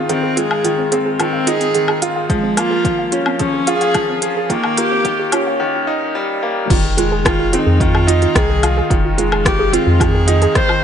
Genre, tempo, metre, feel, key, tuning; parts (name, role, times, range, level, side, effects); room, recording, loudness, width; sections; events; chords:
piano and strings electronica; 109 BPM; 4/4; straight; F minor; A4 = 440 Hz
warbly dusty pluck; arpeggios; 0.0-10.8 s; C4 to F5; -22 LUFS; right 5 dB; chorus, sidechain pumping, ping-pong delay
bright upright piano; riff; 0.0-10.8 s; Eb3 to Ab4; -19 LUFS; left 1 dB; ping-pong delay
warm viola; melody; 0.1-10.8 s; Ab3 to C5; -19 LUFS; equal
deep house drum kit; drums; 0.1-10.8 s; crash cymbal, hi-hat, rim click, woodblock; -21 LUFS; left 2 dB; high-pass filter on hats, high-pass filter on perc, high-pass filter on cymbals, high-pass filter on snare, high-pass filter on room
electronic kick drum; drums; 2.3-10.7 s; -19 LUFS; equal
round analog bass; bass; 6.7-10.5 s; F1 to F2; -17 LUFS; equal; sidechain pumping
moderate lush hall reverb, RT60 1.8 s; high-pass filter, nothing above 10.8 kHz; -13 LUFS; side -8 dB against mid
0.0-6.7 A section; 6.7-10.8 B section
build-up 0.0-6.7; break 5.6-6.7; drop 6.7-10.8
0.0 Fm7; 2.3 Bbm7; 4.5 Eb7; 6.7 Fm7